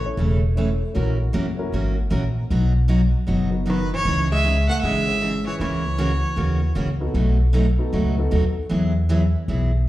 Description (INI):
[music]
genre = country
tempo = 155 BPM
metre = 4/4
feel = swing 64% on 8ths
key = unclear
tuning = A4 = 439 Hz
[part]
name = clear fiddle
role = melody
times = 0.0, 3.7-6.7 s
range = B4 to F#5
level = -25 LUFS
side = right 1 dB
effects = slapback echo
[part]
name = archtop guitar, miked and amplified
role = second line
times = 0.0, 3.7-6.7 s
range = D#3 to A3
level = -27 LUFS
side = right 1 dB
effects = none
[part]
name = dark upright piano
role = accompaniment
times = 0.0-8.3 s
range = B3 to C#5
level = -32 LUFS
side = left 2 dB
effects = slapback echo
[part]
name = upright bass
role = bass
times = 0.0-9.9 s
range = E1 to E2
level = -21 LUFS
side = equal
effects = none
[part]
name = picked steel-string acoustic guitar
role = accompaniment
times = 0.2-9.7 s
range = B2 to A#4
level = -24 LUFS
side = right 1 dB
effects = slapback echo
[sound]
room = light reverb, studio ambience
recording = live gig heard through the venue's PA, club reverb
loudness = -18 LUFS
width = side -15 dB against mid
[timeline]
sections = 0.0-9.9 A section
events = none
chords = 0.0 A; 0.9 F#7; 2.5 B; 4.0 C#madd9; 5.6 F#7/C#; 7.2 B7; 8.7 Eadd9